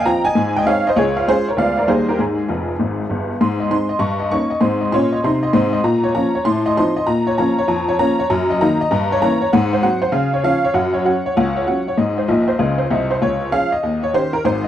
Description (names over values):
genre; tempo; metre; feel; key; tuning
jazz, stride piano; 196 BPM; 4/4; swing 64% on 8ths; Ab major, Db major from 8.3 s; A4 = 440 Hz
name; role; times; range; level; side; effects
honky-tonk upright piano; solo; 0.0-14.7 s; F1 to Db6; -15 LUFS; equal; tape echo
room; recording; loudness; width
light reverb; dry, close 1970s-style studio recording; -15 LUFS; side -11 dB against mid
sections
0.0-3.4 A section; 3.4-13.2 B section; 13.2-14.7 A section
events
honky-tonk piano fill 2.5-3.4, 12.3-13.2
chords
0.4 Ab; 1.0 Db; 1.6 Ddim7; 1.9 Eb; 2.2 Ab5; 3.4 Ab; 4.0 Eb7/G; 4.6 Ab; 5.9 Bbm; 6.5 F7/A; 7.1 Bbm; 8.3 Ebm/Gb; 8.9 Gdim7; 9.5 Ab7; 10.1 Db; 10.8 Gb5; 12.0 Ab; 13.2 Db; 13.8 Eb7